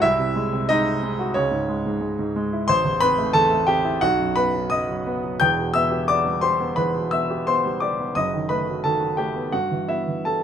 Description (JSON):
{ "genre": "classical, romantic character piece for solo piano", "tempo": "88 BPM", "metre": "4/4", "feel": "uneven beats, rubato", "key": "E minor", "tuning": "A4 = 440 Hz", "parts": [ { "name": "warm grand piano", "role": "solo", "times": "0.0-10.4 s", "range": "E1 to G6", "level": "-19 LUFS", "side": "equal", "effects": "none" } ], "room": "moderate studio reverb, RT60 0.8 s", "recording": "none", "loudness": "-19 LUFS", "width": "side -8 dB against mid", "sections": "0.0-10.4 A section", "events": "none", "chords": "0.0 G#/B#; 1.3 C#5; 2.7 Am; 4.0 B; 5.4 Em; 8.2 B7/F#; 9.5 Em/G" }